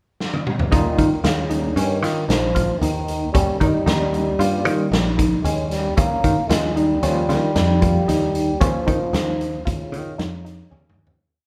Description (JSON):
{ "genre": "progressive instrumental, band music in an uneven meter", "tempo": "114 BPM", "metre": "5/4", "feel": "straight", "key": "Eb mixolydian", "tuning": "A4 = 440 Hz", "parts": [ { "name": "raw garage drum kit", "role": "drums", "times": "0.2-11.2 s", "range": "hi-hat, kick drum, snare drum, toms", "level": "-25 LUFS", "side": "equal", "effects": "none" }, { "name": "trombone with cup mute", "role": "second line", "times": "0.7-10.9 s", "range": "Db3 to Bb3", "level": "-27 LUFS", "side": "equal", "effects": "none" }, { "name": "overdriven tine electric piano", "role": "accompaniment", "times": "0.7-9.3 s", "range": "F3 to G4", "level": "-30 LUFS", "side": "equal", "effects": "medium tremolo" }, { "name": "tight sequenced synth", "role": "arpeggios", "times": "0.7-11.1 s", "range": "Db4 to F4", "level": "-27 LUFS", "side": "equal", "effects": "chorus" }, { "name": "picked electric bass", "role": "bass", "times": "0.7-11.1 s", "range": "Bb1 to Eb3", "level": "-25 LUFS", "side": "equal", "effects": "none" } ], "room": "moderate recital hall reverb, RT60 1.4 s", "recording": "recorded in a church or concert hall", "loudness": "-20 LUFS", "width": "mono", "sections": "0.0-0.7 pickup bar; 0.7-11.2 groove", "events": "drum fill 0.2-0.7, 10.7-11.2; fade-out 8.6-11.2", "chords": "0.0 N.C.; 0.7 Eb7; 6.0 Bbm/Eb", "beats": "0.19 | 0.72 1.24 1.76 2.29 2.81 | 3.34 3.86 4.39 4.92 5.44 | 5.97 6.50 7.03 7.55 8.08 | 8.61 9.13 9.66 10.19 10.71" }